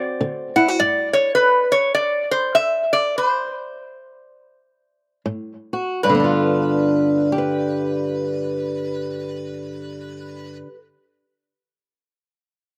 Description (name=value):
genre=acoustic country blues, solo or duo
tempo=74-104 BPM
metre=4/4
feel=swing 60% on 8ths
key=G mixolydian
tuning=A4 = 439 Hz
part: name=metal-body resonator slide guitar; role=melody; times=0.0-10.6 s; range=B4 to F#5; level=-20 LUFS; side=equal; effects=slapback echo
part: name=fingerpicked old ladder-braced acoustic guitar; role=accompaniment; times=0.0-1.3, 5.3-10.8 s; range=G2 to B4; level=-23 LUFS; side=equal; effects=none
room=little or no reverb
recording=recorded outdoors, with no room sound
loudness=-20 LUFS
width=mono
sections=0.0-6.0 A section; 6.0-9.3 B section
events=slowing down 0.8-6.0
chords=0.0 D7; 0.8 N.C.; 5.3 F#sus2/G#; 6.0 G7